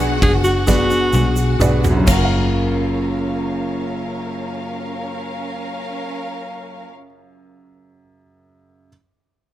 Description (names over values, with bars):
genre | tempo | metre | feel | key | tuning
pop ballad | 63 BPM | 4/4 | straight | F# major | A4 = 440 Hz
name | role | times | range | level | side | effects
rich symphonic violin section | second line | 0.0-6.9 s | C#4 to F#5 | -27 LUFS | left 1 dB | none
clear baby grand piano | accompaniment | 0.0-8.9 s | F#2 to E#5 | -25 LUFS | right 3 dB | none
fingerpicked plugged-in steel-string acoustic guitar | arpeggios | 0.0-7.1 s | F#3 to A#4 | -23 LUFS | left 2 dB | tape echo
vintage muted fingered electric bass | bass | 0.0-6.9 s | F#1 to B1 | -20 LUFS | equal | none
bright alto saxophone | melody | 0.2-1.6 s | F#4 to G#4 | -20 LUFS | right 1 dB | none
huge arena drum kit | drums | 0.2-2.3 s | crash cymbal, kick drum, ride cymbal, snare drum, toms | -20 LUFS | equal | none
egg shaker | percussion | 0.4-3.0 s | none | -32 LUFS | right 6 dB | none
room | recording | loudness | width
little or no reverb | none | -17 LUFS | side -13 dB against mid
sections
0.0-2.5 A section; 2.5-6.4 B section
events
slowing down 0.0-2.5; drum fill 0.7-2.5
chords
0.0 Bm6; 2.1 F#maj7